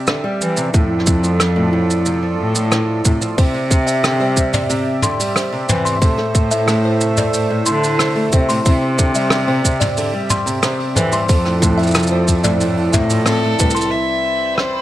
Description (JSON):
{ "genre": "folktronica", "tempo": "91 BPM", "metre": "4/4", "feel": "straight", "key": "C major", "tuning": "A4 = 442 Hz", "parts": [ { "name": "accordion", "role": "sustained chords", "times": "0.0-14.8 s", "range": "C3 to E5", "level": "-25 LUFS", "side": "right 3 dB", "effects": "light tremolo tuning" }, { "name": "fingerpicked old ladder-braced acoustic guitar", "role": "arpeggios", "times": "0.0-13.9 s", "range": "A2 to A3", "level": "-22 LUFS", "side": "equal", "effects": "tape echo" }, { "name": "vintage brush drum kit", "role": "drums", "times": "0.1-14.7 s", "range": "hi-hat, rim click, shaker, toms", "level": "-20 LUFS", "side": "equal", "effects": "none" }, { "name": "rich cello", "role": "bass", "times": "0.4-13.8 s", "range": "C2 to E3", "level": "-19 LUFS", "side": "equal", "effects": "none" }, { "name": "electronic kick drum", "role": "drums", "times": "0.7-13.7 s", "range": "none", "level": "-15 LUFS", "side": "equal", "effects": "none" }, { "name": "music box", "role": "second line", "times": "3.4-13.9 s", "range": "C4 to C6", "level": "-22 LUFS", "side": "equal", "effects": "tape echo" }, { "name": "warm violin", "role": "melody", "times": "13.3-14.8 s", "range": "A4 to E5", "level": "-19 LUFS", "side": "left 2 dB", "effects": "none" }, { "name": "backwards swelling texture", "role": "texture", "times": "14.4-14.8 s", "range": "C5 to B5", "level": "-32 LUFS", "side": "right 4 dB", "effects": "built-in reverb" } ], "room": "light reverb, small room ambience", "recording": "none", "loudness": "-14 LUFS", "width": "side -14 dB against mid", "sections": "0.0-13.9 A section", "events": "band accent 13.3-13.6", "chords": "0.0 Cadd9; 0.7 F6; 3.4 Cadd9; 6.0 Am; 8.7 Cadd9; 11.3 F6; 13.9 Cadd9", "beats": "0.08 | 0.74 1.40 2.06 2.72 | 3.38 4.04 4.70 5.36 | 6.02 6.67 7.33 7.99 | 8.65 9.31 9.97 10.63 | 11.29 11.95 12.61 13.27 | 13.93 14.59" }